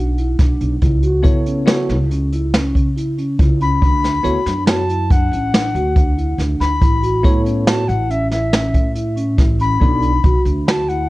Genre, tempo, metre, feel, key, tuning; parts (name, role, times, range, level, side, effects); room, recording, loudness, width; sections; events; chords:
progressive instrumental, band music in an uneven meter; 140 BPM; 7/4; straight; A major; A4 = 440 Hz
vibraphone with soft mallets; arpeggios; 0.0-11.0 s; C#4 to F#4; -22 LUFS; right 1 dB
upright bass; bass; 0.0-11.1 s; A1 to C#3; -20 LUFS; equal; transformer saturation
jazz brush drum kit; drums; 0.2-11.0 s; hi-hat, kick drum, snare drum; -16 LUFS; equal
bell-like tine electric piano; accompaniment; 1.2-10.1 s; B3 to D5; -22 LUFS; equal; medium stereo tremolo, plate reverb
bright reedy wooden flute; melody; 3.6-11.1 s; E5 to B5; -22 LUFS; left 4 dB; tape echo
light reverb; worn, warbling old tape, cassette tape, warbly pitch drift; -14 LUFS; side -18 dB against mid
0.0-11.1 A section
0.0 Bm; 0.8 F#m7/C# (rootless); 3.8 Dmaj7; 6.8 Aadd9; 9.8 Bm